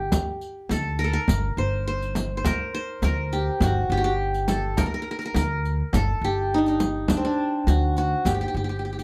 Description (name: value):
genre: Arabic maqam ensemble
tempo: 103 BPM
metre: 4/4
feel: straight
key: G maqam nahawand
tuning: A4 = 440 Hz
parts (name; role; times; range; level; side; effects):
- qanun; melody; 0.0-9.0 s; C4 to C5; -28 LUFS; equal; none
- upright bass; bass; 0.0-9.0 s; G1 to D2; -28 LUFS; equal; none
- frame drum; percussion; 0.1-8.4 s; none; -29 LUFS; equal; none
- riq; percussion; 0.1-9.0 s; none; -36 LUFS; equal; none
room: light reverb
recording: none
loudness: -24 LUFS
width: mono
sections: 0.0-9.0 A section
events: none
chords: none